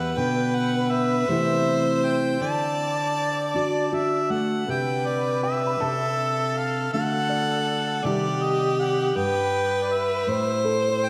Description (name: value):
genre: acoustic folk-pop ballad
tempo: 53 BPM (dotted quarters)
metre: 6/8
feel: straight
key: unclear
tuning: A4 = 440 Hz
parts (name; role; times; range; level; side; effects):
- warm harmonica; melody; 0.0-11.1 s; D5 to A5; -29 LUFS; equal; diffuse ambient delay
- clear violin; second line; 0.0-11.1 s; G4 to D5; -28 LUFS; equal; none
- fingerpicked steel-string acoustic guitar; accompaniment; 0.0-11.1 s; E2 to G4; -28 LUFS; equal; none
- felt-muted upright piano; arpeggios; 5.4-11.1 s; A4 to B5; -36 LUFS; equal; analog chorus, diffuse ambient delay
room: wet lush hall reverb, RT60 2.6 s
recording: dreamy mix soaked in reverb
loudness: -24 LUFS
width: mono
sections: 0.0-11.1 A section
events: none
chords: 0.2 Bm; 1.3 Am/C; 2.4 D; 4.7 Csus2; 5.8 Cmaj13; 6.9 D; 8.0 Cm; 9.2 N.C.; 10.3 Am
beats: | 0.16 1.28 | 2.41 3.54 | 4.67 5.80 | 6.92 8.04 | 9.15 10.28